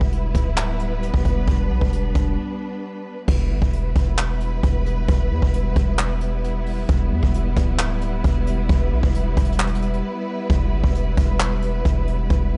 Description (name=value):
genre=hip hop, trap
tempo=133 BPM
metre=4/4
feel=half-time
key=E minor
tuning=A4 = 440 Hz
part: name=warm symphonic string section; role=sustained chords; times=0.0-12.6 s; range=G3 to B4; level=-30 LUFS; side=equal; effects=none
part: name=hard-hitting 808-style bass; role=bass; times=0.0-12.6 s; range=D1 to E2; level=-24 LUFS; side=equal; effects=none
part: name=jazz brush drum kit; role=drums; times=0.0-12.4 s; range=crash cymbal, handclaps, hi-hat, kick drum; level=-23 LUFS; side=equal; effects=none
room=studio reverb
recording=dark, warm production, nothing above 11.0 kHz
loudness=-21 LUFS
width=mono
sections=0.0-3.3 A section; 3.3-12.6 B section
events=break 2.4-3.3, 10.0-10.5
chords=0.0 Em